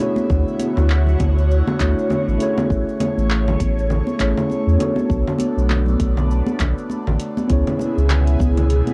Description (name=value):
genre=sunset chillout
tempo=100 BPM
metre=4/4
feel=swing 58% on 16ths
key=unclear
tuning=A4 = 440 Hz
part: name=mellow tine electric piano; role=accompaniment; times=0.0-8.9 s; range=A3 to C#5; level=-26 LUFS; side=equal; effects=cassette tape, tape echo
part: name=airy breathy pad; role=sustained chords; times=0.0-8.9 s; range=B2 to C#5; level=-28 LUFS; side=equal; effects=chorus, phaser, cassette tape
part: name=smooth R&B drum kit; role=drums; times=0.0-8.9 s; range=congas, handclaps, hi-hat, shaker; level=-29 LUFS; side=equal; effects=cassette tape
part: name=congas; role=percussion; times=0.2-8.9 s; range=none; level=-28 LUFS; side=equal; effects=none
part: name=warm sub bass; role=bass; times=0.3-8.8 s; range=A1 to E2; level=-19 LUFS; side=equal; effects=none
part: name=electronic kick drum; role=drums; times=0.3-8.5 s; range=none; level=-26 LUFS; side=equal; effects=cassette tape
room=light reverb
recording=home recording on cassette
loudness=-19 LUFS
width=mono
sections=0.0-7.5 A section; 7.5-8.9 B section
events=none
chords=0.3 Dmaj9; 2.7 Amaj7; 5.1 Bm9; 7.5 C#m7